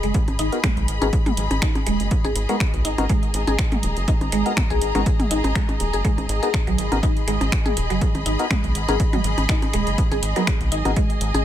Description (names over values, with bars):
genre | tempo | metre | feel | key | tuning
minimal techno | 122 BPM | 4/4 | swing 55% on 16ths | G# minor | A4 = 440 Hz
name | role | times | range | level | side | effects
mallet-like synth pluck | riff | 0.0-11.4 s | F#3 to G#4 | -27 LUFS | right 1 dB | lush chorus, sidechain pumping, dub echo
rubbery square bass | bass | 0.0-11.4 s | D#1 to B1 | -24 LUFS | equal | sidechain pumping
punchy analog drum machine | drums | 0.0-11.4 s | finger snaps, hi-hat | -28 LUFS | right 1 dB | none
rich symphonic string section | texture | 0.0-11.4 s | G#4 to B5 | -28 LUFS | left 1 dB | sidechain pumping
electronic kick drum | drums | 0.1-11.1 s | none | -22 LUFS | equal | none
electronic percussion blips and toms | percussion | 0.3-11.4 s | none | -28 LUFS | left 1 dB | dub echo
percussive organ stab | stabs | 0.5-10.9 s | B3 to A#4 | -29 LUFS | left 4 dB | chorus, dub echo
room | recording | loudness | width
little or no reverb | none | -18 LUFS | side -11 dB against mid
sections
0.0-11.4 A section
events
none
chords
0.0 G#m7